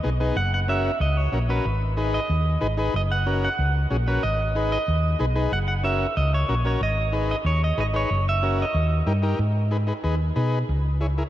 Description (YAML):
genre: latin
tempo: 186 BPM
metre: 4/4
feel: straight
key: G# minor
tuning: A4 = 443 Hz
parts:
  - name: clean electric guitar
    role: melody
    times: 0.0-9.2 s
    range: B4 to F#5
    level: -27 LUFS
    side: right 2 dB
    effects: spring reverb, diffuse ambient delay
  - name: combo organ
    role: accompaniment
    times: 0.0-11.2 s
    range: B3 to C#5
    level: -28 LUFS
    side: left 2 dB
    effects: none
  - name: hollow-body short-scale fingered electric bass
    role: bass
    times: 0.0-11.2 s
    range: F#1 to B2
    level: -23 LUFS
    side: equal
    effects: none
room: moderate huge ambient reverb, RT60 4.5 s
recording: dreamy mix soaked in reverb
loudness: -21 LUFS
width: side -13 dB against mid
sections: 0.0-9.4 A section; 9.4-11.3 B section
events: none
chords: 0.4 F#; 1.7 G#m; 2.9 F#; 4.2 G#m; 5.5 F#; 6.8 G#m; 8.1 F#; 8.7 D#; 9.4 G#m; 10.7 C#m